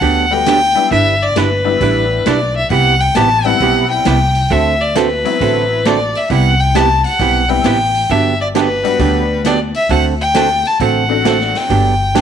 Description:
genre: country, western swing.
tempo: 134 BPM.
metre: 4/4.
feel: swing 66% on 8ths.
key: G major.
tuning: A4 = 440 Hz.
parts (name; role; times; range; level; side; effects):
clear fiddle; melody; 0.0-12.2 s; B4 to A5; -15 LUFS; left 2 dB; none.
archtop guitar, miked and amplified; accompaniment; 0.0-12.2 s; C3 to B4; -17 LUFS; right 9 dB; none.
upright bass; bass; 0.0-12.2 s; G1 to D2; -18 LUFS; left 1 dB; none.
vintage drum kit; drums; 0.0-12.2 s; hi-hat, kick drum, snare drum; -24 LUFS; left 8 dB; none.
tack piano; accompaniment; 0.3-11.7 s; F#3 to F#4; -20 LUFS; left 13 dB; none.
room: light reverb.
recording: 1960s-style stereo with parts hard left and right.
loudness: -11 LUFS.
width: side -8 dB against mid.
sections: 0.0-12.2 A section.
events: none.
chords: 0.0 Gmaj9; 0.9 Em7/G; 2.7 Cmaj7; 4.5 D13; 6.3 Cmaj7; 8.1 Gmaj7; 9.9 D7; 11.7 Gmaj7.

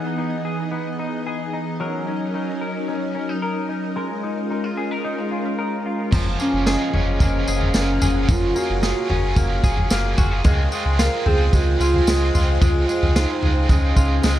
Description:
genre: dream pop.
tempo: 111 BPM.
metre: 4/4.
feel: straight.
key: Gb lydian from 6.1 s.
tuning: A4 = 439 Hz.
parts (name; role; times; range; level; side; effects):
string machine, violas; sustained chords; 0.0-14.4 s; E3 to C6; -28 LUFS; equal; ensemble chorus.
semi-hollow electric guitar; arpeggios; 0.0-14.4 s; F3 to A#4; -27 LUFS; left 3 dB; lush chorus, dub echo.
cranked stack guitar; accompaniment; 6.1-14.4 s; Db3 to Ab4; -28 LUFS; right 3 dB; overdrive, harmonic tremolo, lush chorus.
sub bass with octave; bass; 6.1-14.4 s; Gb1 to Db2; -21 LUFS; equal; none.
vintage drum kit; drums; 6.1-14.4 s; crash cymbal, kick drum, snare drum, tambourine, toms; -20 LUFS; equal; none.
warbly nostalgic lead; melody; 6.4-14.4 s; Db4 to Bb4; -24 LUFS; right 1 dB; chorus, tremolo, dub echo.
vibraphone with medium hard mallets; texture; 6.7-13.4 s; Bb4 to Ab5; -35 LUFS; left 2 dB; dub echo.
room: light reverb.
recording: echo-heavy mix.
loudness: -18 LUFS.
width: side -13 dB against mid.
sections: 0.0-6.1 A section; 6.1-14.4 B section.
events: none.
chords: 0.0 Emaj7; 1.8 F#6; 4.0 C#69; 6.1 Gbmaj9; 10.5 Dbmaj7.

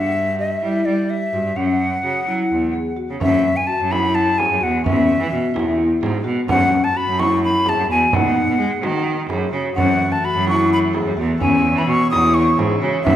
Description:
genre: contemporary instrumental, chamber music in an uneven meter.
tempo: 256 BPM (eighths).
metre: 7/8.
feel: straight.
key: F# dorian from 3.2 s.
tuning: A4 = 439 Hz.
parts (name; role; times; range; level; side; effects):
breathy bright concert flute; melody; 0.0-13.2 s; D5 to D#6; -20 LUFS; left 1 dB; none.
vibraphone with soft mallets; arpeggios; 0.0-13.2 s; C#4 to G#4; -21 LUFS; left 3 dB; none.
bright cello; bass; 0.0-13.2 s; E2 to G#3; -22 LUFS; right 3 dB; none.
frame drum; percussion; 3.2-13.2 s; none; -25 LUFS; right 3 dB; none.
pipe organ, principal chorus; sustained chords; 9.8-13.2 s; E3 to F#4; -25 LUFS; left 1 dB; none.
room: wet recital hall reverb, RT60 1.4 s.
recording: none.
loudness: -16 LUFS.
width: side -11 dB against mid.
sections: 0.0-3.2 A section; 3.2-13.2 B section.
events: none.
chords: 0.0 G5; 1.6 F#5; 4.8 C#m/E; 6.5 F#5; 8.1 B; 9.8 F#m7; 11.4 C#m/E.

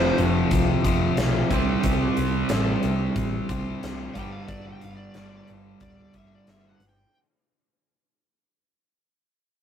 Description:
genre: hard rock.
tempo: 91 BPM.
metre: 4/4.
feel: straight.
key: unclear.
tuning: A4 = 440 Hz.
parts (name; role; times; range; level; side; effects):
high-gain lead guitar; melody; 0.0-0.2, 4.1-7.2 s; C5 to G5; -31 LUFS; left 3 dB; distortion.
biting overdriven guitar; riff; 0.0-6.8 s; F2 to C4; -28 LUFS; left 8 dB; none.
overdriven electric guitar; riff; 0.0-6.8 s; F2 to C4; -26 LUFS; right 6 dB; none.
hollow-body short-scale picked electric bass; bass; 0.0-7.0 s; D1 to C2; -29 LUFS; left 1 dB; none.
huge arena drum kit; drums; 0.2-7.0 s; hi-hat, kick drum, snare drum; -28 LUFS; left 1 dB; none.
room: light reverb.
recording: rough rehearsal-room recording.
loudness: -21 LUFS.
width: side -9 dB against mid.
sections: 0.0-7.1 A section.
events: fade-out 0.0-7.1; lead electric guitar solo 0.0-7.1.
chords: 0.0 F5; 1.5 C5; 4.2 G5.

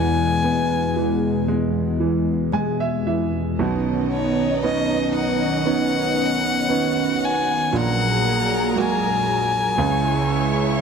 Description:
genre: pop ballad.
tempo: 58 BPM.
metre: 4/4.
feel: straight.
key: B major from 3.6 s.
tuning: A4 = 441 Hz.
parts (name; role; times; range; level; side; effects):
clear violin; melody; 0.0-10.8 s; C#5 to G#5; -24 LUFS; left 4 dB; none.
clear concert grand piano; accompaniment; 0.0-10.8 s; A#1 to G#5; -24 LUFS; right 5 dB; none.
lush unison pad; sustained chords; 0.0-10.8 s; E2 to G#4; -23 LUFS; right 1 dB; chorus.
fingerpicked steel-string acoustic guitar; arpeggios; 0.0-3.7 s; E2 to B3; -25 LUFS; left 12 dB; slapback echo.
warm studio violin section; second line; 3.6-10.8 s; D#4 to C#6; -29 LUFS; equal; none.
room: small room ambience.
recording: dry, close 1970s-style studio recording.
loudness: -18 LUFS.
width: side -6 dB against mid.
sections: 0.0-3.6 A section; 3.6-10.8 B section.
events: grand piano fill 2.0-3.6.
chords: 0.0 E; 3.6 Badd9; 7.7 F#add9/A#; 9.8 C#m.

